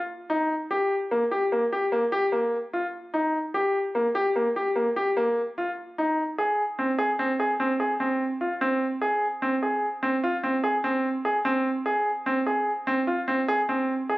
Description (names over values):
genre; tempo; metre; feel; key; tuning
contemporary instrumental, contemporary; 148 BPM; 7/4; straight; F minor; A4 = 441 Hz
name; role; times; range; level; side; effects
bright concert grand piano; solo; 0.3-14.2 s; Bb3 to Ab4; -23 LUFS; equal; none
room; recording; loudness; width
moderate recital hall reverb, RT60 1.4 s; recorded on a phone in the room, club reverb, compression; -23 LUFS; side -18 dB against mid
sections
0.0-8.6 A section; 8.6-14.2 B section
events
none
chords
none